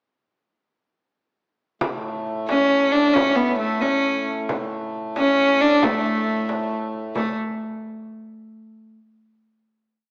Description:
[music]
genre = medieval dance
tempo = 90 BPM (dotted quarters)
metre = 6/8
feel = straight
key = A major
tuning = A4 = 440 Hz
[part]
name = hand-pumped harmonium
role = drone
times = 1.8-7.2 s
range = A2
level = -32 LUFS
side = equal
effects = none
[part]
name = frame drum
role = percussion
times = 1.8-7.4 s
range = none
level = -32 LUFS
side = equal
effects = none
[part]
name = warm viola da gamba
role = melody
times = 2.5-7.4 s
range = A3 to D4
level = -22 LUFS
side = equal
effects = none
[sound]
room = wet recital hall reverb, RT60 1.7 s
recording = small speaker sound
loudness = -21 LUFS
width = mono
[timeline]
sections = 1.8-7.2 A section; 7.2-8.5 final note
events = none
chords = none

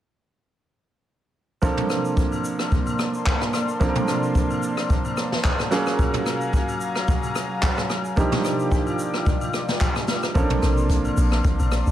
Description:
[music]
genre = amapiano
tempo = 110 BPM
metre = 4/4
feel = swing 55% on 16ths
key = Bb major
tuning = A4 = 445 Hz
[part]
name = bright concert grand piano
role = accompaniment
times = 1.6-11.9 s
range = F3 to Bb4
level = -26 LUFS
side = right 3 dB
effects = none
[part]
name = warm analog pad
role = sustained chords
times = 1.6-11.9 s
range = Gb3 to D6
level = -29 LUFS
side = left 1 dB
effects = chorus
[part]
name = jazz brush drum kit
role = drums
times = 1.6-11.9 s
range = handclaps, hi-hat, kick drum, rim click, shaker, snare drum, toms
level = -23 LUFS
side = equal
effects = none
[part]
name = agogo bells and woodblock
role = percussion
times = 1.6-11.7 s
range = none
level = -34 LUFS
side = left 6 dB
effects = none
[part]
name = deep log drum bass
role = bass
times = 10.4-11.9 s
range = A1 to Bb1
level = -21 LUFS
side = equal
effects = none
[sound]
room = light reverb, small room ambience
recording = none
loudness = -20 LUFS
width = side -12 dB against mid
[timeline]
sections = 1.6-11.9 A section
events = none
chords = 1.6 Bbmaj9; 5.7 Gbmaj9; 8.2 Ebmaj9; 10.4 Bbmaj9

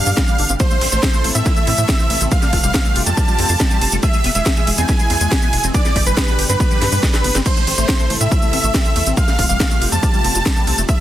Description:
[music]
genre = uplifting trance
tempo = 140 BPM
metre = 4/4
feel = straight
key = A minor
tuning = A4 = 443 Hz
[part]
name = big supersaw lead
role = melody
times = 0.0-11.0 s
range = B4 to A5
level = -20 LUFS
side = right 1 dB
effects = sidechain pumping, tape echo
[part]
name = lush unison pad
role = sustained chords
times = 0.0-11.0 s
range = B2 to A4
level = -26 LUFS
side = equal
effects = chorus, sidechain pumping
[part]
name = liquid acid bass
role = arpeggios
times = 0.0-10.9 s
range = G3 to G4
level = -27 LUFS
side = left 4 dB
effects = ensemble chorus, sidechain pumping, tape echo
[part]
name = tight sequencer bass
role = bass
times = 0.0-10.8 s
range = E1 to A2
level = -20 LUFS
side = equal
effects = sidechain pumping
[part]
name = techno drum kit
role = drums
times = 0.1-11.0 s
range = crash cymbal, hi-hat, ride cymbal, shaker, snare drum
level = -20 LUFS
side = equal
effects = overdrive, sidechain pumping on hats, sidechain pumping on cymbals, sidechain pumping on perc
[part]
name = electronic kick drum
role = drums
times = 0.2-11.0 s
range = none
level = -17 LUFS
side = equal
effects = overdrive
[sound]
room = digital ambience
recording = dense, heavily limited modern master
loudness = -13 LUFS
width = side -12 dB against mid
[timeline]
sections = 0.0-7.5 A section; 7.5-11.0 A section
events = drop 0.0-7.5, 7.5-11.0; drum fill 6.8-7.5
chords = 0.0 G; 0.6 Am; 2.3 Fadd9; 4.0 E; 5.7 G; 7.5 Am; 9.2 Fadd9

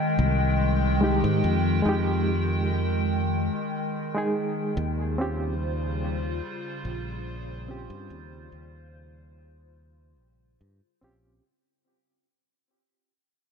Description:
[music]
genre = trip hop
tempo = 72 BPM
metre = 4/4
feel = straight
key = unclear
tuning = A4 = 440 Hz
[part]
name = warbly tape-like pad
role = sustained chords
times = 0.0-11.4 s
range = Db3 to G5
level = -28 LUFS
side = left 1 dB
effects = chorus, built-in reverb, phaser
[part]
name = fingered electric bass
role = bass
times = 0.2-11.4 s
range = Bb1 to Ab2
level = -27 LUFS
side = equal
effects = tube saturation
[part]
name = reed electric piano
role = accompaniment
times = 1.0-11.4 s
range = Ab3 to Ab4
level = -29 LUFS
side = right 1 dB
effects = fast tremolo, harmonic tremolo, vintage 12-bit sampler grit, tape echo
[sound]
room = light reverb, digital ambience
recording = dark, warm production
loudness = -24 LUFS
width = side -6 dB against mid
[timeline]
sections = 0.0-11.4 A section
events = fade-out 0.0-11.4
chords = 0.0 Fm9; 4.8 Eb13

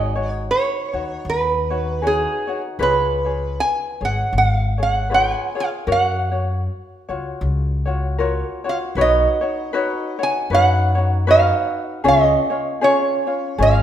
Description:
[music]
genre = Hawaiian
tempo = 78 BPM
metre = 4/4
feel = swing 59% on 8ths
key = F# major, B lydian from 9.0 s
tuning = A4 = 440 Hz
[part]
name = lap resonator guitar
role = melody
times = 0.0-13.8 s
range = G#4 to G#5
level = -19 LUFS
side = right 3 dB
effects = none
[part]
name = ukulele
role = accompaniment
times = 0.0-13.8 s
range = C#4 to C#5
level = -22 LUFS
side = left 3 dB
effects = none
[part]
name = upright bass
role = bass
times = 0.0-13.8 s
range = G#1 to F#2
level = -21 LUFS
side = left 1 dB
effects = none
[sound]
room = moderate recital hall reverb, RT60 1.5 s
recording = minimal, uncompressed stereo recording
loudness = -17 LUFS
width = side -10 dB against mid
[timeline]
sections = 0.0-9.0 A section; 9.0-13.8 B section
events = none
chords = 0.0 G#7sus4; 2.8 C#7; 5.9 F#maj7; 9.0 Badd9; 12.0 C#

